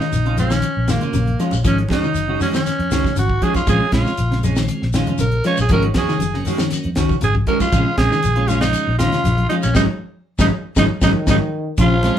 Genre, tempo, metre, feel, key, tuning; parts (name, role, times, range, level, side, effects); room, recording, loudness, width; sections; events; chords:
afrobeat; 118 BPM; 4/4; straight; A4 = 440 Hz
raspy alto saxophone; melody; 0.0-12.2 s; Bb3 to Db5; -21 LUFS; right 2 dB
electric guitar at the edge of break-up; arpeggios; 0.0-12.0 s; Db3 to Ab3; -23 LUFS; left 4 dB
semi-hollow electric guitar; stabs; 0.0-12.2 s; Eb3 to Gb4; -24 LUFS; right 4 dB
tight funk drum kit; drums; 0.0-12.2 s; hi-hat, kick drum, snare drum; -22 LUFS; equal
shekere; percussion; 0.0-12.2 s; -28 LUFS; left 5 dB
fingered electric bass; bass; 0.1-12.1 s; Gb1 to F2; -20 LUFS; equal
congas; percussion; 0.1-12.2 s; -27 LUFS; equal
tonewheel organ; accompaniment; 3.7-12.2 s; Db3 to Db4; -27 LUFS; right 2 dB; slow rotary speaker
breathy trombone; second line; 11.0-12.2 s; Eb3 to F3; -24 LUFS; equal
moderate studio reverb, RT60 0.5 s; band playing live in one room; -15 LUFS; side -10 dB against mid
0.0-11.8 A section
band accent 9.8-11.8
0.0 Bbm7; 1.7 Ab7sus4; 3.7 Bbm7; 5.7 Ab7sus4; 7.7 Bbm7; 9.8 Ab7sus4